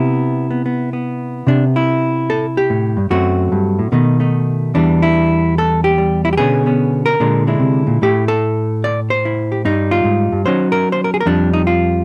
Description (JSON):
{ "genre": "solo jazz", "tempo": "147 BPM", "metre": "4/4", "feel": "swing 66% on 8ths", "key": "C major", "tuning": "A4 = 440 Hz", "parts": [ { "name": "hollow-body jazz guitar", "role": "solo", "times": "0.0-12.0 s", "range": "E2 to D5", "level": "-16 LUFS", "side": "equal", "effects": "none" } ], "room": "light reverb", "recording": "close, detailed microphones", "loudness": "-16 LUFS", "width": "mono", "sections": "0.0-1.5 A section; 1.5-12.0 B section", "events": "none", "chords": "0.0 Cmaj7; 1.5 C6; 3.1 F#dim; 3.9 B7; 4.7 Em7; 6.4 Bmadd9; 7.2 Bb7#11; 8.0 Am7; 9.6 Fm9/G; 10.4 F#5; 11.3 Fsus2", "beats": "0.23 0.64 1.05 | 1.46 1.87 2.28 2.69 | 3.10 3.51 3.92 4.33 | 4.74 5.14 5.55 5.96 | 6.37 6.78 7.18 7.59 | 8.00 8.41 8.81 9.22 | 9.63 10.04 10.44 10.85 | 11.26 11.66" }